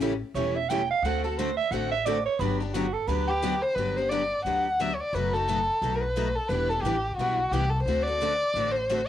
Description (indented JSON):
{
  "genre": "acoustic string swing (jazz manouche)",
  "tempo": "176 BPM",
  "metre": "4/4",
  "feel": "swing 60% on 8ths",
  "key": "G major",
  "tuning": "A4 = 441 Hz",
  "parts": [
    { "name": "picked steel-string acoustic guitar", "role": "accompaniment", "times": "0.0-9.0 s", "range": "B2 to A4", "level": "-32 LUFS", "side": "left 10 dB", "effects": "cassette tape" },
    { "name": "picked steel-string acoustic guitar", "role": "accompaniment", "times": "0.0-9.0 s", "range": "D3 to B4", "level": "-34 LUFS", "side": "right 7 dB", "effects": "cassette tape" },
    { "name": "upright bass", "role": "bass", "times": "0.0-9.1 s", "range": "E1 to D2", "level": "-32 LUFS", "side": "left 1 dB", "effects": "none" },
    { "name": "growling soprano saxophone", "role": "second line", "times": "0.3-3.7 s", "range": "D4 to G5", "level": "-28 LUFS", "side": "right 8 dB", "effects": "cassette tape, plate reverb" },
    { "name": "dark violin", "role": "melody", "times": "3.3-9.1 s", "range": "F#4 to F#5", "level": "-26 LUFS", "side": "left 1 dB", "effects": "plate reverb" }
  ],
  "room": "light reverb",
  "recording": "home recording on cassette",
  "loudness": "-24 LUFS",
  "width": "side -11 dB against mid",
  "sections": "0.0-3.8 A section; 3.8-9.1 B section",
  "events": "soprano saxophone solo 0.0-3.8",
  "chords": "0.0 A7; 1.0 D7; 2.4 Gmaj7; 5.1 B7/F#; 6.5 Em7; 7.9 D7"
}